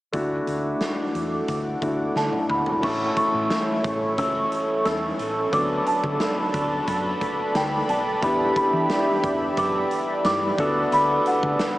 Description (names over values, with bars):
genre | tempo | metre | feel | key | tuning
1980s-style pop | 89 BPM | 4/4 | straight | D major | A4 = 438 Hz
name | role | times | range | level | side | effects
clear concert grand piano | accompaniment | 0.1-11.8 s | F#3 to A4 | -27 LUFS | left 1 dB | none
chorused pulse-width pad | sustained chords | 0.1-11.8 s | E4 to D6 | -26 LUFS | equal | none
hollow-body short-scale fingered electric bass | bass | 0.1-11.6 s | E1 to E3 | -33 LUFS | equal | none
huge arena drum kit | drums | 0.1-11.8 s | crash cymbal, hi-hat, kick drum, snare drum, toms | -31 LUFS | equal | none
small celesta | melody | 2.2-11.8 s | F#5 to E6 | -25 LUFS | equal | lush chorus
overdriven semi-hollow guitar | accompaniment | 2.8-11.8 s | A2 to E4 | -33 LUFS | equal | ensemble chorus
room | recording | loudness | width
wet huge ambient reverb, RT60 7.8 s | dreamy mix soaked in reverb, small speaker sound | -21 LUFS | side -16 dB against mid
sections
0.1-2.8 A section; 2.8-11.8 B section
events
drum fill 2.2-2.8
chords
0.1 Dadd9; 2.8 A; 5.5 D6; 8.2 Em7; 10.6 D6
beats
| 0.14 0.81 1.48 2.16 | 2.83 3.51 4.18 4.85 | 5.53 6.20 6.88 7.55 | 8.22 8.90 9.57 10.25 | 10.92 11.60